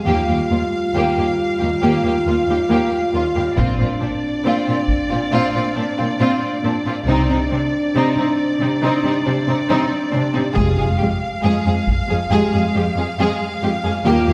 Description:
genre	cinematic, epic orchestral film score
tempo	69 BPM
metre	4/4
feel	straight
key	F dorian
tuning	A4 = 440 Hz
part	rich symphonic violin section	melody	0.0-14.3 s	D5 to F5	-29 LUFS	equal	none
part	dark French horn section	sustained chords	0.0-14.3 s	G3 to G4	-24 LUFS	equal	none
part	rich studio violin section	second line	0.1-14.3 s	D4 to Ab4	-27 LUFS	equal	none
part	rich symphonic viola section	accompaniment	0.1-14.3 s	Ab3 to C4	-25 LUFS	equal	none
part	rich symphonic cello section	bass	0.1-14.3 s	Eb2 to C3	-25 LUFS	equal	none
part	rich symphonic double bass section	bass	0.1-14.3 s	F1 to Eb2	-25 LUFS	equal	none
part	taiko ensemble	drums	3.6-5.3, 10.6-12.3 s	none	-26 LUFS	equal	none
room	wet scoring stage reverb, RT60 1.5 s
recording	heard from further back in the room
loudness	-18 LUFS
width	mono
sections	0.0-14.3 A section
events	build-up 0.0-14.3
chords	0.1 Ebadd9; 3.6 Bbadd9; 7.1 Cmadd9; 10.6 Fmadd9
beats	| 0.07 0.95 1.82 2.70 | 3.57 4.45 5.32 6.20 | 7.08 7.95 8.82 9.70 | 10.56 11.44 12.31 13.19 | 14.06

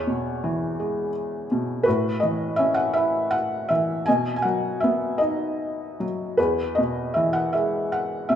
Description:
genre	classical, lyrical solo piano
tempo	51-57 BPM (dotted quarters)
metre	6/8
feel	rubato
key	E major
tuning	A4 = 440 Hz
part	felt-muted upright piano	solo	0.0-8.4 s	E2 to G#5	-21 LUFS	equal	none
room	moderate recital hall reverb, RT60 1.4 s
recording	recorded in a church or concert hall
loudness	-21 LUFS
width	side -9 dB against mid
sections	0.0-8.4 A section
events	none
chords	0.0 C#m7/E; 1.9 A6; 4.1 B; 6.4 E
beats	0.78 | 1.85 2.94 | 4.07 5.21 | 6.38 7.54

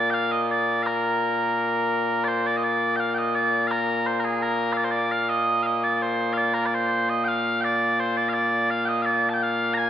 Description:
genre	scottish traditional, Scottish pipe music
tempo	84 BPM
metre	2/4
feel	straight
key	Bb major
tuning	A4 = 439 Hz
part	mellow small bagpipes	solo	0.0-9.9 s	Bb2 to Bb5	-21 LUFS	equal	none
room	wet scoring stage reverb, RT60 1.9 s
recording	recorded in a church or concert hall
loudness	-21 LUFS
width	side -10 dB against mid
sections	0.0-2.3 A section; 2.3-9.9 A section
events	none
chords	none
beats	0.14 | 0.85 1.56 | 2.28 2.99 | 3.71 4.42 | 5.14 5.85 | 6.57 7.28 | 7.99 8.71 | 9.42

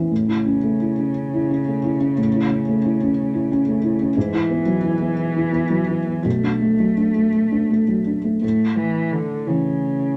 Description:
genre	neoclassical piano and strings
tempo	54-61 BPM (dotted quarters)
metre	6/8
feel	rubato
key	A major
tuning	A4 = 440 Hz
part	felt-muted upright piano	accompaniment	0.0-10.2 s	B1 to E4	-22 LUFS	equal	none
part	dark cello	second line	0.1-10.2 s	C#3 to A3	-24 LUFS	equal	none
room	wet studio reverb, RT60 0.7 s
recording	none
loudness	-20 LUFS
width	mono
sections	0.1-8.4 A section; 8.4-10.2 B section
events	none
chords	0.1 A; 4.2 Eadd9/G#; 6.2 Bm7; 8.4 A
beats	| 0.10 1.16 | 2.18 3.17 | 4.16 5.18 | 6.25 7.35 | 8.43 9.47

